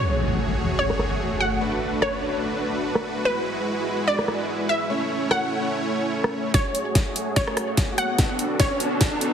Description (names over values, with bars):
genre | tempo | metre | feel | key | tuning
heavy wobble dubstep | 146 BPM | 4/4 | swing 54% on 16ths, half-time | F# minor | A4 = 441 Hz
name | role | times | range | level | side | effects
wide unison pluck | melody | 0.0-9.3 s | B4 to F#5 | -26 LUFS | equal | tape echo
supersaw chords | sustained chords | 0.0-9.3 s | G#3 to C#5 | -26 LUFS | right 1 dB | vintage 12-bit sampler grit, sidechain pumping, low-pass filter
impact and riser | sound effects | 0.0-1.6, 7.3-9.3 s | none | -28 LUFS | equal | none
dubstep drum kit | drums | 0.2-9.3 s | hi-hat, rim click, snare drum | -27 LUFS | equal | high-pass filter on hats, low-pass filter on hats, small room ambience, high-pass filter on snare, low-pass filter on snare
electronic kick drum | drums | 6.5-9.1 s | none | -22 LUFS | equal | small room ambience
room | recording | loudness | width
moderate lush hall reverb, RT60 1.8 s | heavily compressed radio sound, multiband compression | -21 LUFS | side -8 dB against mid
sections
0.0-6.5 A section; 6.5-9.3 B section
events
impact 0.0-1.6; build-up 6.5-9.3; drum fill 6.5-9.3; filter sweep on supersaw synth 6.5-9.3; riser 7.3-9.3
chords
0.0 F#madd9; 1.6 Bm7; 3.3 Eadd9; 4.9 A; 6.5 F#madd9; 8.2 Bm7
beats
0.38 0.79 1.20 | 1.61 2.02 2.43 2.84 | 3.25 3.67 4.08 4.49 | 4.90 5.31 5.72 6.13 | 6.54 6.95 7.36 7.77 | 8.19 8.60 9.01